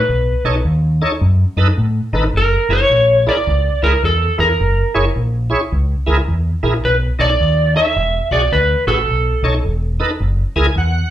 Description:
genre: electric blues shuffle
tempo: 107 BPM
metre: 4/4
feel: swing 63% on 8ths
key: unclear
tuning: A4 = 440 Hz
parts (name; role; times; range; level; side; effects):
- electric slide guitar; melody; 0.0-9.6 s; A4 to E5; -16 LUFS; equal; slapback echo
- deep dub fingered electric bass; bass; 0.1-11.0 s; E1 to A2; -16 LUFS; equal; none
- bright tonewheel organ; accompaniment; 0.4-11.1 s; D#4 to G#5; -20 LUFS; right 1 dB; slow rotary speaker, overdrive, chorus vibrato, slapback echo
room: light reverb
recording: live gig heard through the venue's PA, club ambience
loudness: -13 LUFS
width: side -12 dB against mid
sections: 0.0-11.1 A section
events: tonewheel organ fill 10.2-11.1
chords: 0.0 B7; 2.3 F#7; 6.8 B7; 8.0 E7; 9.1 B7; 10.2 F#7

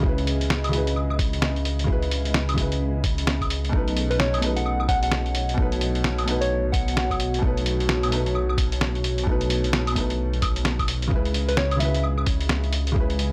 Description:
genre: future garage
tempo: 130 BPM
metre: 4/4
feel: swing 62% on 16ths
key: unclear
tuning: A4 = 439 Hz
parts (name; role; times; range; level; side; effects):
- felt-muted upright piano; accompaniment; 0.0-13.3 s; B2 to B4; -32 LUFS; equal; sidechain pumping, analog delay
- warbly tape-like pad; sustained chords; 0.0-13.3 s; B3 to E5; -34 LUFS; equal; chorus, built-in reverb, vintage 12-bit sampler grit, sidechain pumping
- dark detuned saw bass; bass; 0.0-13.3 s; B1 to C#2; -28 LUFS; equal; tube saturation, sidechain pumping
- electronic kick drum; drums; 0.0-13.1 s; none; -27 LUFS; equal; small room reverb
- lo-fi sampler-style drum kit; drums; 0.2-13.3 s; claves, hi-hat, snare drum; -30 LUFS; equal; small room reverb
- soft struck synth lead; melody; 4.1-7.4, 11.5-12.0 s; B4 to F#5; -32 LUFS; equal; chorus, analog delay
room: little or no reverb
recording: dry, gritty hardware recording, transformer saturation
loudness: -23 LUFS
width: mono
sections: 0.0-13.3 A section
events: none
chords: 0.0 C#m7; 3.7 B7; 11.1 C#m7

